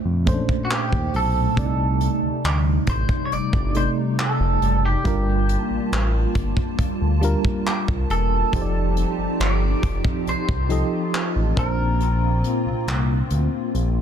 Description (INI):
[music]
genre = contemporary R&B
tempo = 69 BPM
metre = 4/4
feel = straight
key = C dorian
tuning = A4 = 440 Hz
[part]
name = clean electric guitar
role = melody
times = 0.0-14.0 s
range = F#4 to D5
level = -27 LUFS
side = right 2 dB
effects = lush chorus, ping-pong delay
[part]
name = FM electric piano with auto-pan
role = accompaniment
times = 0.0-14.0 s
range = Bb2 to Eb5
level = -27 LUFS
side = right 1 dB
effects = none
[part]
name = hollow soft pad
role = sustained chords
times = 0.0-14.0 s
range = Bb2 to A5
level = -27 LUFS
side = equal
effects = ensemble chorus
[part]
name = smooth gliding synth bass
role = bass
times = 0.0-14.0 s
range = E1 to F2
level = -22 LUFS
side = equal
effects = none
[part]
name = soft brush drum kit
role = drums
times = 0.3-13.9 s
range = handclaps, hi-hat, kick drum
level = -25 LUFS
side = equal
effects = none
[sound]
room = small room ambience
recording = dense, heavily limited modern master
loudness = -19 LUFS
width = side -8 dB against mid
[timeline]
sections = 0.0-14.0 A section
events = kick muted 12.0-14.0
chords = 0.0 Bbmaj9; 1.6 Cm69; 5.1 Gm7; 8.5 F13; 11.6 Bbadd9